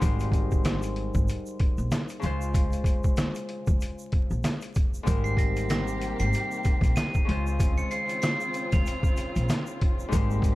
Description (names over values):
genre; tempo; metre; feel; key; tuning
hip hop, boom-bap hip-hop; 95 BPM; 4/4; swing 57% on 16ths; unclear; A4 = 438 Hz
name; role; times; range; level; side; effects
Celtic harp; accompaniment; 0.0-10.6 s; Ab2 to C5; -34 LUFS; left 2 dB; high-pass filter, low-pass filter
upright bass; bass; 0.0-10.6 s; Ab1 to Db2; -28 LUFS; equal; none
trip hop sampler-style drum kit; drums; 0.0-10.6 s; hi-hat, kick drum, rim click, snare drum; -25 LUFS; equal; none
egg shaker; percussion; 0.0-10.6 s; none; -49 LUFS; right 3 dB; none
warm studio string section; sustained chords; 5.1-10.6 s; C3 to G4; -35 LUFS; left 1 dB; high-pass filter, low-pass filter
glockenspiel with soft plastic mallets; melody; 5.2-9.5 s; Bb6 to F7; -33 LUFS; right 2 dB; high-pass filter, low-pass filter, tape echo
room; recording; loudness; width
small room ambience; dark, warm production, vinyl crackle; -24 LUFS; side -18 dB against mid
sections
0.0-5.1 A section; 5.1-10.6 B section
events
none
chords
0.0 Abmaj9; 2.2 Dbmaj7; 5.1 Abmaj9; 7.3 Dbmaj7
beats
| 0.02 0.65 1.28 1.91 | 2.54 3.17 3.81 4.44 | 5.07 5.70 6.33 6.96 | 7.59 8.23 8.86 9.49 | 10.12